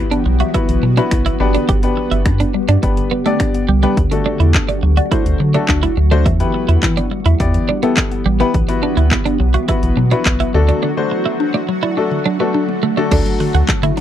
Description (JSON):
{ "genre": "dance-pop", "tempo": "105 BPM", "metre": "4/4", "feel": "straight", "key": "unclear", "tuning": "A4 = 440 Hz", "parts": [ { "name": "clear grand piano", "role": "accompaniment", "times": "0.0-13.8 s", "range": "F#3 to D5", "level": "-20 LUFS", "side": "left 5 dB", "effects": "none" }, { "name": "shimmering ambient pad", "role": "sustained chords", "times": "0.0-14.0 s", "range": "D3 to G4", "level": "-23 LUFS", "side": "equal", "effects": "chorus, built-in reverb, sidechain pumping" }, { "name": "mallet-like synth pluck", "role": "arpeggios", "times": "0.0-14.0 s", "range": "D3 to E5", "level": "-24 LUFS", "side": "left 4 dB", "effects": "chorus, phaser, sidechain pumping, slapback echo" }, { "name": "twelve-string electric guitar", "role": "riff", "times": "0.1-14.0 s", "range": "G3 to G4", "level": "-20 LUFS", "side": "right 7 dB", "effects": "lush chorus" }, { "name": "house drum kit", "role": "drums", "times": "0.1-14.0 s", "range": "crash cymbal, finger snaps, handclaps, hi-hat, kick drum", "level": "-18 LUFS", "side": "equal", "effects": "none" }, { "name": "round analog bass", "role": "bass", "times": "0.3-13.9 s", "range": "G1 to E3", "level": "-15 LUFS", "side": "equal", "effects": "sidechain pumping" } ], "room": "little or no reverb", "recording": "dry, close 1970s-style studio recording", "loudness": "-13 LUFS", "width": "side -11 dB against mid", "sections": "0.0-13.1 A section", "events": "break 10.8-13.1", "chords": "0.0 Bsus4; 1.4 G; 4.0 D; 6.3 Em; 8.5 Bsus4; 10.5 D" }